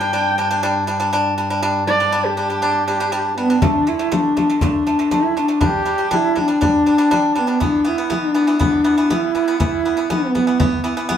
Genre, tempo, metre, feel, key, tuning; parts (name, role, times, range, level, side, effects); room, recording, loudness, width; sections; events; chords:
mongolian traditional, Mongolian folk; 120 BPM; 4/4; straight; G gong mode; A4 = 442 Hz
dark horsehead fiddle; melody; 0.0-11.1 s; B3 to G5; -18 LUFS; equal
pipa; arpeggios; 0.0-11.2 s; D3 to D4; -20 LUFS; equal
muted cello; drone; 0.0-3.7 s; G2; -29 LUFS; left 1 dB
frame drum; percussion; 3.6-11.2 s; -22 LUFS; left 2 dB
wet studio reverb, RT60 0.7 s; band playing live in one room; -15 LUFS; side -9 dB against mid
0.0-3.6 A section; 3.6-11.2 B section
0.0 G5; 3.6 D5; 5.6 G5; 7.6 E5